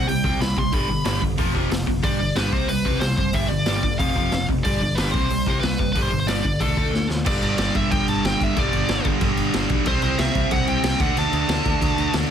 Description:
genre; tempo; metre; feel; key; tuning
punk rock; 184 BPM; 4/4; straight; G major; A4 = 444 Hz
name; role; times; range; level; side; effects
high-gain lead guitar; melody; 0.0-12.1 s; A4 to C6; -25 LUFS; equal; distortion
biting overdriven guitar; riff; 0.0-12.3 s; F2 to D4; -24 LUFS; right 1 dB; none
picked electric bass; bass; 0.0-12.2 s; F1 to D2; -26 LUFS; equal; none
raw garage drum kit; drums; 0.1-12.2 s; crash cymbal, hi-hat, kick drum, snare drum; -24 LUFS; equal; none
high-gain distorted guitar; riff; 7.3-12.3 s; G2 to D4; -28 LUFS; right 1 dB; distortion
room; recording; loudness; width
light reverb; dense, heavily limited modern master; -19 LUFS; side -8 dB against mid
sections
0.0-7.3 A section; 7.3-12.3 B section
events
drum fill 6.9-7.3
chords
0.0 C5; 0.7 G; 1.4 F5; 2.0 G5; 2.5 C5; 3.3 G5; 4.0 F5; 4.7 G5; 5.1 C5; 6.0 G5; 6.6 D5; 7.3 G5; 9.9 C; 11.0 D5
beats
0.07 0.40 | 0.73 1.06 1.38 1.71 | 2.04 2.37 2.69 3.02 | 3.35 3.67 4.00 4.33 | 4.66 4.98 5.31 5.63 | 5.96 6.29 6.61 6.94 | 7.26 7.59 7.92 8.24 | 8.56 8.89 9.21 9.54 | 9.86 10.19 10.51 10.84 | 11.16 11.49 11.81 12.13

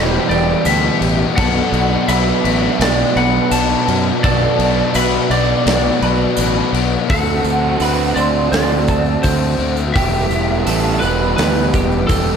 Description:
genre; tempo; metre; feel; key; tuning
rock, shoegaze and dream pop; 84 BPM; 4/4; straight; E minor; A4 = 440 Hz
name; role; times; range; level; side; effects
lightly driven lead guitar; melody; 0.0-12.4 s; A4 to A5; -20 LUFS; right 1 dB; tape echo
twelve-string electric guitar; arpeggios; 0.0-12.4 s; G4 to B5; -25 LUFS; right 1 dB; analog chorus, tape echo
crunchy overdriven guitar; riff; 0.0-12.4 s; B2 to A4; -21 LUFS; right 11 dB; reverse reverb
overdriven electric guitar; riff; 0.0-12.4 s; E2 to G4; -21 LUFS; left 10 dB; wide subtle chorus
overdriven electric guitar; riff; 0.0-7.1 s; E2 to B3; -23 LUFS; left 3 dB; none
fuzz fingered electric bass; bass; 0.0-12.4 s; E1 to F#2; -20 LUFS; equal; overdrive
big rock drum kit; drums; 0.3-12.3 s; crash cymbal, hi-hat, kick drum, snare drum; -21 LUFS; left 1 dB; none
tambourine; percussion; 0.7-12.3 s; none; -32 LUFS; right 14 dB; none
room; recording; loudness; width
light reverb, small room ambience; none; -13 LUFS; side -7 dB against mid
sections
0.0-7.1 A section; 7.1-12.4 B section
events
none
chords
0.0 Em; 1.4 Bm7; 7.1 D7; 10.0 Em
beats
0.66 | 1.38 2.09 2.81 3.52 | 4.24 4.95 5.67 6.38 | 7.10 7.81 8.53 9.24 | 9.95 10.67 11.38 12.10

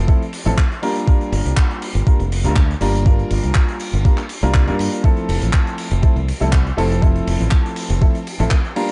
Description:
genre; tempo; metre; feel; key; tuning
nu-disco, nu disco; 121 BPM; 4/4; straight; unclear; A4 = 443 Hz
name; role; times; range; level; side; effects
warm baby grand piano; accompaniment; 0.0-8.9 s; F3 to Bb4; -25 LUFS; equal; sidechain pumping, digital delay
modern bright fingered electric bass; bass; 0.0-8.5 s; F1 to G2; -21 LUFS; equal; none
electronic kick drum; drums; 0.1-8.6 s; none; -17 LUFS; equal; overdrive
unplugged drum kit; drums; 0.1-8.9 s; handclaps, hi-hat, ride cymbal; -30 LUFS; equal; none
room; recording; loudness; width
small room reverb; dark, warm production, nothing above 10.6 kHz; -17 LUFS; mono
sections
0.0-8.9 A section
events
none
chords
0.0 Fmaj7; 0.8 Gm7; 5.0 Fmaj7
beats
0.08 0.58 | 1.07 1.57 2.07 2.56 | 3.06 3.55 4.05 4.54 | 5.04 5.54 6.03 6.53 | 7.03 7.52 8.02 8.51

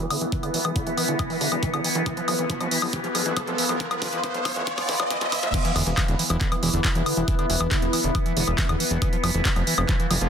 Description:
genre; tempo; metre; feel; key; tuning
psychedelic trance; 138 BPM; 4/4; straight; unclear; A4 = 441 Hz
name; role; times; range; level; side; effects
overtone-sweeping drone; sustained chords; 0.0-10.3 s; E3 to B3; -30 LUFS; equal; chorus, built-in reverb, phaser, sidechain pumping
overdriven acid bass; riff; 0.0-10.3 s; D3 to F3; -30 LUFS; right 1 dB; auto-pan, sidechain pumping, tape echo
fat analog bass; bass; 0.0-10.3 s; E1 to F1; -28 LUFS; equal; high-pass filter
drum and bass drum kit; drums; 0.0-10.3 s; crash cymbal, handclaps, hi-hat, woodblock; -27 LUFS; left 1 dB; overdrive
riser; sound effects; 1.3-5.5 s; none; -32 LUFS; right 1 dB; none
deep dark ambient pad; texture; 0.0-10.3 s; E4 to C6; -30 LUFS; equal; chorus, built-in reverb, sidechain pumping
electronic kick drum; drums; 0.3-10.0 s; none; -26 LUFS; equal; overdrive
room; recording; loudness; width
light reverb; dense, heavily limited modern master, high-pass filter; -21 LUFS; side -7 dB against mid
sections
0.0-5.5 A section; 5.5-10.3 B section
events
build-up 0.0-5.5; filter sweep on acid bass 0.0-5.5; riser 1.3-5.5; drum fill 2.1-5.5; drop 5.5-10.3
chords
0.0 E5; 2.1 F5; 5.5 E5; 9.0 F5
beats
| 0.32 0.76 1.19 1.63 | 2.06 2.50 2.93 3.37 | 3.80 4.24 4.67 5.11 | 5.54 5.97 6.41 6.84 | 7.28 7.71 8.15 8.58 | 9.02 9.45 9.89

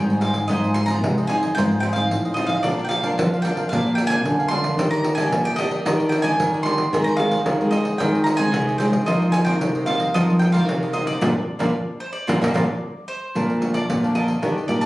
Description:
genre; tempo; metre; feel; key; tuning
samba and choro; 112 BPM; 4/4; straight; unclear; A4 = 441 Hz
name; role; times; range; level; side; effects
mandolin; melody; 0.0-14.9 s; C5 to C6; -26 LUFS; right 1 dB; none
nylon-string guitar; accompaniment; 0.0-14.9 s; F2 to Ab4; -24 LUFS; equal; none
nylon-string guitar; bass; 0.0-14.9 s; Ab2 to F3; -22 LUFS; equal; none
cavaquinho; accompaniment; 0.1-14.9 s; D4 to A5; -30 LUFS; right 2 dB; none
pandeiro; percussion; 0.1-14.9 s; none; -26 LUFS; right 1 dB; none
room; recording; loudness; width
moderate studio reverb, RT60 0.9 s; recorded on a phone in the room, studio reverb; -18 LUFS; side -18 dB against mid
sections
0.0-13.4 A section; 13.4-14.9 B section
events
band accent 11.2-13.4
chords
0.5 Fm7/Ab; 2.6 Bb; 4.8 Ebmaj7; 6.9 Ab/Eb; 9.1 F7sus4; 11.2 Bb; 13.4 Bbmaj7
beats
| 0.50 1.03 1.57 2.11 | 2.64 3.18 3.72 4.25 | 4.79 5.32 5.86 6.40 | 6.93 7.47 8.00 8.54 | 9.08 9.61 10.15 10.68 | 11.22 11.75 12.29 12.82 | 13.36 13.89 14.43

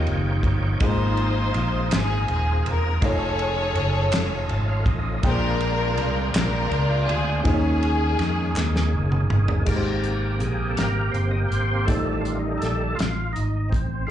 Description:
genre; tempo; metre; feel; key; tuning
slow gospel; 54 BPM (dotted quarters); 6/8; straight; Ab major; A4 = 441 Hz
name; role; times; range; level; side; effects
dark studio string section; melody; 0.0-8.9 s; Db4 to C#5; -26 LUFS; left 2 dB; slapback echo
warm upright piano; accompaniment; 0.0-14.1 s; Ab2 to G#5; -30 LUFS; left 1 dB; slapback echo
overdriven tonewheel organ; sustained chords; 0.0-14.1 s; C3 to A5; -29 LUFS; right 2 dB; fast rotary speaker, chorus vibrato
fingered electric bass; bass; 0.0-14.1 s; Eb1 to F2; -24 LUFS; equal; none
warm soul drum kit; drums; 0.1-13.9 s; crash cymbal, hi-hat, kick drum, ride cymbal, snare drum, toms; -27 LUFS; equal; none
group handclap; percussion; 1.9-8.9 s; none; -32 LUFS; left 1 dB; none
room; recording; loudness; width
light reverb; live gig heard through the venue's PA, club reverb, nothing above 10.4 kHz; -20 LUFS; side -11 dB against mid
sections
0.0-9.7 A section; 9.7-14.1 B section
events
tonewheel organ fill 4.1-5.2; drum fill 8.6-9.7; tonewheel organ solo 9.7-14.1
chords
0.0 Eb13; 0.8 Ab69; 3.0 F7alt; 5.2 Bb13; 7.5 Eb7sus4; 9.7 Abmaj7; 11.9 F7/A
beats
| 0.81 1.92 | 3.02 4.13 | 5.24 6.35 | 7.46 8.56 | 9.67 10.78 | 11.89 13.00

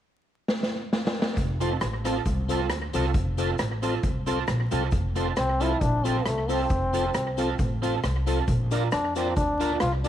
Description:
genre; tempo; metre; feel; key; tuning
ska; 135 BPM; 4/4; swing 54% on 8ths; F major; A4 = 440 Hz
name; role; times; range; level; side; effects
street-band drum kit; drums; 0.5-10.1 s; hi-hat, kick drum, rim click, snare drum; -29 LUFS; equal; slapback echo
upright bass; bass; 1.4-10.1 s; F1 to F2; -28 LUFS; equal; none
cabasa; percussion; 1.4-10.1 s; none; -49 LUFS; left 10 dB; none
electric guitar at the edge of break-up; accompaniment; 1.6-10.1 s; C4 to Bb4; -31 LUFS; right 10 dB; ensemble chorus
tonewheel organ; stabs; 1.6-10.1 s; C4 to D5; -32 LUFS; left 8 dB; stopped rotary speaker
warm trombone; melody; 5.4-10.1 s; A3 to F4; -27 LUFS; left 1 dB; none
room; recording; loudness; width
light reverb, small room ambience; 1960s-style stereo with parts hard left and right, vinyl crackle; -23 LUFS; side -11 dB against mid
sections
0.0-1.4 A section; 1.4-4.9 B section; 4.9-10.1 C section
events
drum fill 0.5-1.4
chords
0.0 N.C.; 1.4 F; 8.5 Bb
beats
0.03 0.48 0.92 | 1.37 1.81 2.25 2.70 | 3.14 3.59 4.03 4.48 | 4.92 5.37 5.81 6.25 | 6.70 7.14 7.59 8.03 | 8.48 8.92 9.37 9.81

